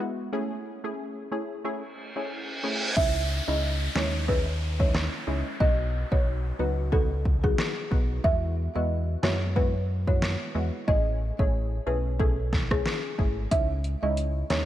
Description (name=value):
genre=dancehall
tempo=91 BPM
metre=4/4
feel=swing 56% on 16ths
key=C# minor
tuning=A4 = 439 Hz
part: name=punchy chord stab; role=accompaniment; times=0.0-14.7 s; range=F#3 to G#4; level=-33 LUFS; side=equal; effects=chorus
part: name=reverse cymbal and downlifter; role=sound effects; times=2.0-8.2 s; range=none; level=-34 LUFS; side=right 1 dB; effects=none
part: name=folk marimba with medium mallets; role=melody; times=3.0-14.7 s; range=G#4 to E5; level=-31 LUFS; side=equal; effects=digital delay
part: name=sub bass with octave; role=bass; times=3.0-14.7 s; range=G#1 to F#2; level=-28 LUFS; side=equal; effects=none
part: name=deep house drum kit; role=drums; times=3.0-14.7 s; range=crash cymbal, hi-hat, kick drum, rim click, snare drum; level=-26 LUFS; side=equal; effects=gated reverb
room=light reverb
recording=bright 1980s-style digital production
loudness=-24 LUFS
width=side -13 dB against mid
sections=0.0-3.0 A section; 3.0-14.7 B section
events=reverse cymbal 2.0-3.0; hi-hats muted 3.0-13.5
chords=0.3 Amaj7; 3.0 C#madd9; 5.6 B; 8.2 Eadd9; 10.9 Amaj7; 13.5 C#madd9